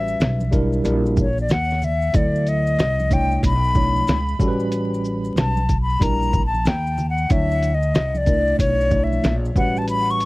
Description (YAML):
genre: hip hop, jazz-hop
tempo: 93 BPM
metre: 4/4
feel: swing 65% on 16ths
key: unclear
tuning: A4 = 442 Hz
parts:
  - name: breathy silver concert flute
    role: melody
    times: 0.0-10.3 s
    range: C#5 to C#6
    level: -23 LUFS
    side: left 2 dB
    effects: tape echo
  - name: tine electric piano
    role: accompaniment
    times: 0.0-10.3 s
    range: D3 to C#5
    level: -24 LUFS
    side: right 1 dB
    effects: overdrive, fast stereo tremolo
  - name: upright bass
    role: bass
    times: 0.0-10.3 s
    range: A1 to Eb2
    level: -22 LUFS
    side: equal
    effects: none
  - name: maracas and congas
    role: percussion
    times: 0.1-10.3 s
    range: none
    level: -32 LUFS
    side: right 1 dB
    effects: none
  - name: lo-fi sampler-style drum kit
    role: drums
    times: 0.2-10.3 s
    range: hi-hat, kick drum, shaker, snare drum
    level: -20 LUFS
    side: equal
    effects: none
room: little or no reverb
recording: dry, close 1970s-style studio recording, vinyl crackle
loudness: -17 LUFS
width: side -20 dB against mid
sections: 0.0-10.3 A section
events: flute solo 0.0-10.3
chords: 0.0 A13; 0.8 Gm6/Bb; 2.1 Dadd9; 2.8 Cmadd9; 3.4 Bm11; 4.4 A13; 6.0 Gm6/Bb; 7.3 Dmaj9; 7.9 Csus2; 8.6 Bm11; 9.6 A13